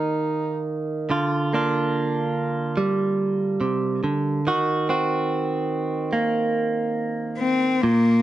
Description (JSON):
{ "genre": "folk", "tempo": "71 BPM", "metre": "4/4", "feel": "straight", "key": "unclear", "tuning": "A4 = 438 Hz", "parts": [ { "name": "stopped French horn", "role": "second line", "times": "0.0-0.7 s", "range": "Eb4", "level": "-29 LUFS", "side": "equal", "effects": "none" }, { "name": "direct-recorded clean electric guitar", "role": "accompaniment", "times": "0.0-8.2 s", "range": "Bb2 to G4", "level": "-22 LUFS", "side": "right 2 dB", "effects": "none" }, { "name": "warm cello", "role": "melody", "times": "7.4-8.2 s", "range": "Bb3 to C4", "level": "-18 LUFS", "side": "left 2 dB", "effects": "none" } ], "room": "moderate studio reverb, RT60 0.6 s", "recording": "nothing above 10.8 kHz", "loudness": "-21 LUFS", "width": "side -13 dB against mid", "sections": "0.0-7.8 A section", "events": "French horn solo 0.0-7.8", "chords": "0.0 Cm7 (rootless); 1.1 Gm7/D; 4.4 Ebm6" }